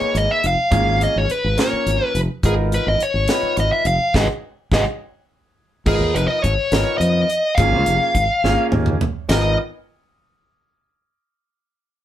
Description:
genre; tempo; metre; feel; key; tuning
electric jazz fusion; 70 BPM (dotted quarters); 6/8; straight; G# dorian; A4 = 439 Hz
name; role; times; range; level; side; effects
dark smooth lead guitar; melody; 0.0-9.6 s; G#4 to E#5; -19 LUFS; left 1 dB; overdrive
clear grand piano; accompaniment; 0.0-9.6 s; A#3 to B4; -24 LUFS; right 2 dB; none
modern bright fingered electric bass; bass; 0.0-9.6 s; E#1 to E#2; -21 LUFS; equal; none
tight funk drum kit; drums; 0.2-9.4 s; crash cymbal, hi-hat, kick drum, ride cymbal, snare drum, toms; -22 LUFS; equal; none
room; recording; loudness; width
moderate studio reverb, RT60 0.5 s; band playing live in one room, lossy compression artefacts; -16 LUFS; side -12 dB against mid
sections
0.0-5.9 A section; 5.9-9.3 B section; 9.3-11.0 C section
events
band accent 4.2-5.9; drum fill 5.0-5.9, 8.4-9.3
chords
0.0 G#m69; 0.7 C#6; 2.4 G#m69; 4.2 G#7(no3); 5.9 G#m69; 7.6 C#69/E#; 9.3 G#m69

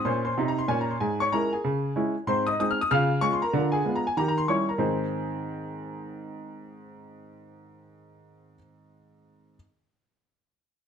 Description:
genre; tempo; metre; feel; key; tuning
jazz, stride piano; 190 BPM; 4/4; swing 64% on 8ths; Ab major; A4 = 440 Hz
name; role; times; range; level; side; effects
clear baby grand piano; solo; 0.0-9.6 s; Ab2 to F6; -24 LUFS; equal; none
room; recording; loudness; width
moderate studio reverb, RT60 0.8 s; dark, warm production; -24 LUFS; side -7 dB against mid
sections
0.0-4.8 A section; 4.8-7.3 B section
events
none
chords
0.0 Ab (rootless); 1.0 Dbm/Ab; 2.3 Ab; 2.9 Db; 3.5 Ddim7; 4.2 Eb7b9; 4.8 Ab

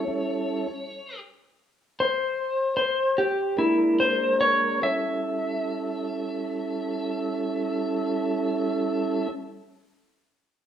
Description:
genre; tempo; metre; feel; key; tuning
blues; 47-54 BPM (dotted quarters); 12/8; straight; A mixolydian; A4 = 440 Hz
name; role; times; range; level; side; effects
clean lap steel guitar; melody; 0.0-9.3 s; E4 to E5; -25 LUFS; left 1 dB; none
mellow tonewheel organ; sustained chords; 0.0-9.3 s; G3 to Bb4; -27 LUFS; right 3 dB; slow rotary speaker
room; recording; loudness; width
moderate large studio reverb, RT60 1.2 s; band playing live in one room; -23 LUFS; side -9 dB against mid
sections
0.0-4.8 A section; 4.8-10.0 B section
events
slowing down 0.0-4.8; stop 0.1-3.6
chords
0.0 A7; 3.6 Bb7; 4.8 A7

